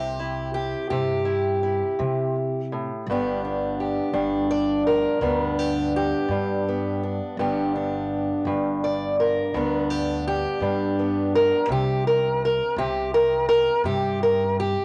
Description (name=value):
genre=acoustic country blues, solo or duo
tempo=56 BPM (dotted quarters)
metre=12/8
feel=straight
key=G major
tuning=A4 = 440 Hz
part: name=fingerpicked steel-string acoustic guitar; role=melody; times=0.0-14.8 s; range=G2 to D5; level=-24 LUFS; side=equal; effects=none
part: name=upright bass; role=bass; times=0.0-14.7 s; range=G1 to C3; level=-33 LUFS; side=equal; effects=none
room=moderate club reverb, RT60 0.9 s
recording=none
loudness=-24 LUFS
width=mono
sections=0.0-14.8 A section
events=none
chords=0.0 C; 3.1 G; 11.7 C5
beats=0.91 1.99 | 3.06 4.14 5.22 6.30 | 7.38 8.46 9.53 10.61 | 11.69 12.77 13.84